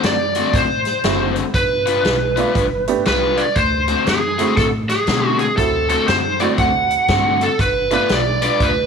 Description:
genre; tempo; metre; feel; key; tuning
electric blues shuffle; 119 BPM; 4/4; swing 63% on 8ths; D mixolydian; A4 = 440 Hz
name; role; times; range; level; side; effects
lead guitar through a small cranked amp; melody; 0.0-8.9 s; G#4 to F#5; -17 LUFS; right 1 dB; overdrive, slapback echo
overdriven electric guitar; riff; 0.0-8.7 s; D3 to B4; -22 LUFS; left 10 dB; none
upright bass; bass; 0.0-8.9 s; F#1 to B2; -25 LUFS; right 1 dB; none
swinging big-band drum kit; drums; 0.0-8.8 s; hi-hat, kick drum, snare drum; -22 LUFS; right 1 dB; none
warm upright piano; accompaniment; 1.0-8.6 s; A3 to G4; -24 LUFS; right 11 dB; none
room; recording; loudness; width
light reverb, studio ambience; 1960s-style stereo with parts hard left and right; -15 LUFS; side -6 dB against mid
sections
0.0-8.9 A section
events
none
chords
0.0 D7; 1.6 G7; 3.6 D7; 7.6 G7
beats
0.04 0.55 1.05 | 1.55 2.06 2.56 3.06 | 3.57 4.07 4.57 5.08 | 5.58 6.09 6.59 7.09 | 7.60 8.10 8.61

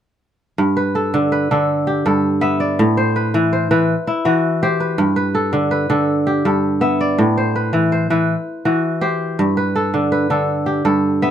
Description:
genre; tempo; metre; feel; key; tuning
west african traditional; 109 BPM (dotted quarters); 12/8; straight; G major; A4 = 440 Hz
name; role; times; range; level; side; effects
kora; arpeggios; 0.6-11.3 s; G2 to E5; -15 LUFS; equal; none
room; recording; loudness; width
little or no reverb; close, detailed microphones; -15 LUFS; side -9 dB against mid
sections
0.6-11.3 A section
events
none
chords
0.6 G; 2.8 Am; 3.9 Em; 5.0 G; 7.2 Am; 8.3 Em; 9.4 G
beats
| 0.59 1.14 1.69 2.23 | 2.78 3.33 3.88 4.43 | 4.98 5.53 6.08 6.63 | 7.18 7.73 8.28 8.83 | 9.38 9.94 10.49 11.04

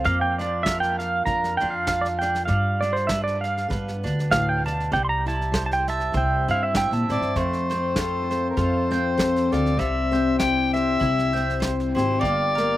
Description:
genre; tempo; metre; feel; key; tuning
acoustic folk duo or small band; 99 BPM; 4/4; swing 56% on 8ths; F major; A4 = 442 Hz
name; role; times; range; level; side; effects
fingerpicked steel-string acoustic guitar; accompaniment; 0.0-12.8 s; F2 to A4; -27 LUFS; left 3 dB; none
mandolin; arpeggios; 0.0-12.8 s; G3 to G5; -31 LUFS; right 4 dB; slapback echo
upright bass; bass; 0.0-12.8 s; G1 to Bb2; -27 LUFS; equal; none
pedal steel guitar; second line; 0.1-7.4 s; C5 to C6; -24 LUFS; right 2 dB; slapback echo
soft brush drum kit; drums; 0.1-12.6 s; kick drum, snare drum; -30 LUFS; equal; none
clear soprano saxophone; melody; 7.1-12.8 s; Bb4 to G5; -25 LUFS; left 1 dB; none
room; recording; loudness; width
little or no reverb; recorded outdoors, with no room sound; -20 LUFS; side -14 dB against mid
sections
0.0-7.4 A section; 7.4-12.8 B section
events
pedal steel guitar solo 0.0-7.4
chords
0.1 Bb/F; 2.5 G7; 4.9 C; 7.4 Fadd9; 9.8 C; 12.2 Gm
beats
| 0.06 0.67 1.27 1.88 | 2.49 3.10 3.71 4.31 | 4.92 5.53 6.14 6.74 | 7.35 7.96 8.57 9.18 | 9.79 10.39 11.00 11.61 | 12.22

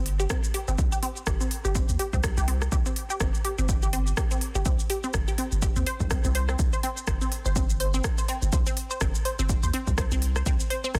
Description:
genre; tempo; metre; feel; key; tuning
minimal techno; 124 BPM; 4/4; swing 57% on 16ths; C minor; A4 = 438 Hz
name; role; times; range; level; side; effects
punchy sub bass; bass; 0.0-11.0 s; G1 to Eb2; -29 LUFS; equal; sidechain pumping
minimal click drum kit; drums; 0.1-11.0 s; hi-hat, rim click, shaker; -35 LUFS; equal; overdrive, soft clipping on snare
resonant blip pluck; riff; 0.2-10.9 s; C4 to C5; -34 LUFS; equal; chorus, phaser, sidechain pumping, delay
electronic kick drum; drums; 0.3-11.0 s; none; -29 LUFS; equal; none
room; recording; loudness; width
digital ambience; dense, heavily limited modern master; -26 LUFS; mono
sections
0.0-11.0 A section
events
none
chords
0.0 C5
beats
0.30 | 0.79 1.27 1.75 2.24 | 2.72 3.20 3.69 4.17 | 4.66 5.14 5.62 6.11 | 6.59 7.08 7.56 8.04 | 8.53 9.01 9.49 9.98 | 10.46 10.95

